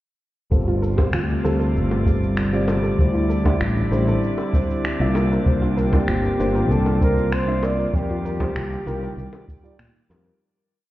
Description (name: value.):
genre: sunset chillout.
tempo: 97 BPM.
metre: 4/4.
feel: straight.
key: G minor.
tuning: A4 = 441 Hz.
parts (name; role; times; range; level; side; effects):
dark baby grand piano; accompaniment; 0.5-10.4 s; G3 to E5; -26 LUFS; equal; auto-pan, digital delay.
lush unison pad; sustained chords; 0.5-10.4 s; C3 to F4; -27 LUFS; equal; chorus.
fretless electric bass; bass; 0.5-10.3 s; G1 to Bb2; -22 LUFS; equal; none.
electronic cabasa and finger snaps; drums; 0.5-10.4 s; none; -32 LUFS; equal; small room ambience.
electronic kick drum; drums; 0.5-9.6 s; none; -21 LUFS; equal; small room ambience.
drifting glass-harmonics texture; texture; 1.2-10.4 s; D5 to D6; -36 LUFS; right 4 dB; chorus, built-in reverb.
soft round pluck; arpeggios; 0.7-10.3 s; E4 to Bb4; -32 LUFS; right 1 dB; chorus, digital delay.
bongos; percussion; 1.0-10.2 s; none; -32 LUFS; left 2 dB; none.
mellow flugelhorn; melody; 5.8-9.8 s; G4 to D5; -26 LUFS; equal; none.
room: light reverb, digital ambience.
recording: heard muffled through a wall, stone room reverb, EQ.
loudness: -18 LUFS.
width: side -15 dB against mid.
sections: 0.5-10.4 groove.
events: fade-out 7.1-10.4.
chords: 0.5 G9sus4; 3.0 D9sus4; 5.2 C9sus4; 7.9 F9sus4.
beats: | 0.52 1.14 1.75 2.37 | 2.99 3.61 4.23 4.85 | 5.47 6.08 6.70 7.32 | 7.94 8.56 9.18 9.80.